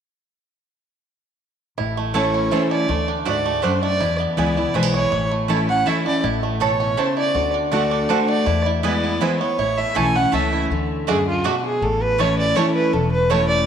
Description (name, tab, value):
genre	bluegrass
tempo	161 BPM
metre	3/4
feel	straight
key	A major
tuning	A4 = 440 Hz
part	picked steel-string acoustic guitar	accompaniment	1.8-13.7 s	E2 to F#4	-22 LUFS	left 1 dB	none
part	bluegrass banjo	arpeggios	1.8-13.4 s	E3 to A4	-26 LUFS	right 6 dB	none
part	upright bass	bass	1.8-13.6 s	E1 to E2	-26 LUFS	left 2 dB	none
part	dark fiddle	melody	2.1-13.7 s	F4 to G#5	-21 LUFS	right 1 dB	tape echo
part	mandolin	stabs	2.1-13.4 s	A3 to A5	-28 LUFS	right 6 dB	none
room	moderate echo chamber reverb, RT60 2.4 s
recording	1960s-style stereo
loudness	-17 LUFS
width	side -8 dB against mid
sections	1.8-10.7 A section; 10.7-13.7 B section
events	none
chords	1.8 A; 2.9 D; 4.0 E; 5.1 A; 7.4 D; 8.5 E; 9.6 A; 10.7 D; 11.8 A